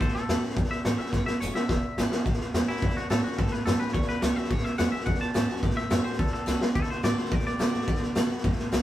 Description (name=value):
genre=rockabilly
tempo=213 BPM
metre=4/4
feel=straight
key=A major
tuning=A4 = 439 Hz
part: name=twangy electric guitar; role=melody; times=0.0-8.3 s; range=E4 to A5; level=-34 LUFS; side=left 1 dB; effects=none
part: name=picked steel-string acoustic guitar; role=accompaniment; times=0.0-8.8 s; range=E2 to F#4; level=-35 LUFS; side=left 2 dB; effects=none
part: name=upright bass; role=bass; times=0.0-8.8 s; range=E1 to D3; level=-33 LUFS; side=equal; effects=none
part: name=raw garage drum kit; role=drums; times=0.0-8.8 s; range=hi-hat, kick drum, snare drum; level=-26 LUFS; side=equal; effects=none
room=light reverb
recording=band playing live in one room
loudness=-24 LUFS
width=side -13 dB against mid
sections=0.0-2.3 A section; 2.3-8.8 B section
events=drum fill 1.1-2.3, 6.5; clean electric guitar solo 2.3-8.8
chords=0.0 A6; 1.7 E6; 2.3 A6; 6.8 D6